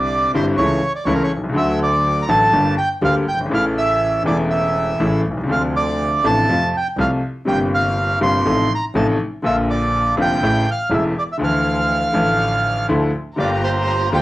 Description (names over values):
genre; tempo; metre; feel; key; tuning
tango; 122 BPM; 4/4; rubato; D minor; A4 = 440 Hz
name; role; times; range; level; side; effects
bandoneon; melody; 0.0-14.2 s; Bb4 to C6; -19 LUFS; right 2 dB; cassette tape
bright baby grand piano; accompaniment; 0.0-14.2 s; E1 to G4; -19 LUFS; left 1 dB; cassette tape
clear double bass; bass; 0.0-14.2 s; E1 to F2; -25 LUFS; right 1 dB; none
warm chamber violin section; second line; 13.4-14.2 s; Bb5; -28 LUFS; left 2 dB; cassette tape
muted symphonic string section; stabs; 13.4-14.2 s; Bb3 to G4; -26 LUFS; equal; cassette tape
room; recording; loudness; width
wet studio reverb, RT60 0.6 s; home recording on cassette; -16 LUFS; side -16 dB against mid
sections
0.0-14.2 A section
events
none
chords
0.0 Cadd9; 0.6 A/C#; 1.6 D; 2.5 Gm; 3.5 A; 5.5 Dm7; 6.5 F; 7.5 C7sus4/G; 8.5 F7/A; 9.4 Bb; 10.4 A; 11.4 Dmadd9; 13.4 Gm7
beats
0.09 0.58 1.07 | 1.56 2.05 2.54 3.03 | 3.52 4.02 4.51 5.00 | 5.50 6.00 6.49 6.99 | 7.48 7.97 8.46 8.95 | 9.44 9.93 10.42 10.91 | 11.40 11.89 12.39 12.88 | 13.38 13.88